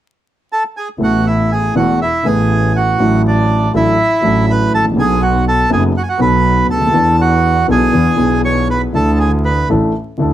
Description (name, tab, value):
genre	tango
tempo	121 BPM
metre	4/4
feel	rubato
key	unclear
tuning	A4 = 439 Hz
part	bandoneon	melody	0.5-9.7 s	D4 to C#6	-15 LUFS	right 2 dB	none
part	dark grand piano	accompaniment	1.0-10.3 s	E1 to B4	-15 LUFS	left 1 dB	none
part	clear double bass	bass	1.0-10.3 s	E1 to E2	-17 LUFS	right 1 dB	none
room	light reverb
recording	vinyl crackle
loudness	-11 LUFS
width	side -12 dB against mid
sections	0.0-1.0 A section; 1.0-10.3 B section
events	none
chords	0.0 N.C.; 1.0 Asus2; 3.0 Dadd9/A; 5.0 B7; 6.9 E7sus4; 7.9 E7; 8.9 Dsus2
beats	0.01 0.51 | 1.01 1.51 2.01 2.51 | 3.00 3.50 3.99 4.49 | 4.98 5.46 5.96 6.45 | 6.95 7.44 7.94 8.44 | 8.95 9.45 9.95